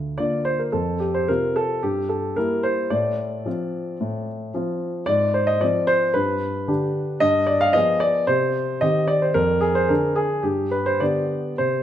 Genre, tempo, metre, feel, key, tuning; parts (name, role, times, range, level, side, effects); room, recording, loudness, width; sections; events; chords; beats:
classical-period piano sonatina; 111 BPM; 4/4; rubato; A4 = 439 Hz
warm concert grand piano; solo; 0.0-11.8 s; D2 to F5; -19 LUFS; equal
moderate recital hall reverb, RT60 1.5 s; close, detailed microphones; -19 LUFS; side -11 dB against mid
0.0-11.8 A section
0.0 Bb/D; 0.7 F5; 1.8 Edim/G; 2.9 F/A; 5.1 Fm/Ab; 6.2 G; 7.2 G7b9; 8.3 Cm; 9.4 Ddim/F; 10.4 G
0.19 | 0.74 1.29 1.83 2.37 | 2.91 3.46 4.00 4.54 | 5.07 5.62 6.15 6.69 | 7.22 7.75 8.29 8.82 | 9.36 9.90 10.45 11.01 | 11.59